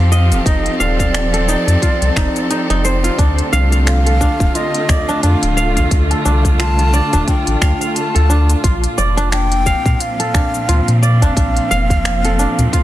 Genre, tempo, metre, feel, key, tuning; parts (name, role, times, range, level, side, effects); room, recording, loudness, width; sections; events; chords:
organic downtempo; 88 BPM; 4/4; swing 57% on 16ths; A4 = 440 Hz
breathy bright low ney; melody; 0.0-12.8 s; D5 to A5; -22 LUFS; equal; tape echo
warm studio string section; sustained chords; 0.0-12.8 s; Bb2 to A4; -21 LUFS; equal; sidechain pumping
kora; arpeggios; 0.0-12.8 s; D4 to F5; -20 LUFS; right 1 dB; vintage 12-bit sampler grit, tape echo
warm sub bass; bass; 0.0-12.7 s; D1 to Bb2; -15 LUFS; equal; sidechain pumping
afro-pop drum kit; drums; 0.1-12.8 s; finger snaps, hi-hat, shaker; -22 LUFS; left 2 dB; small room ambience, soft clipping on snare
electronic kick drum; drums; 0.5-12.8 s; -17 LUFS; equal; small room ambience
udu; percussion; 4.9-12.7 s; -21 LUFS; equal
studio reverb; dense, heavily limited modern master; -12 LUFS; side -14 dB against mid
0.0-12.8 A section
0.0 F7; 3.2 Dm7; 8.6 Bbmaj7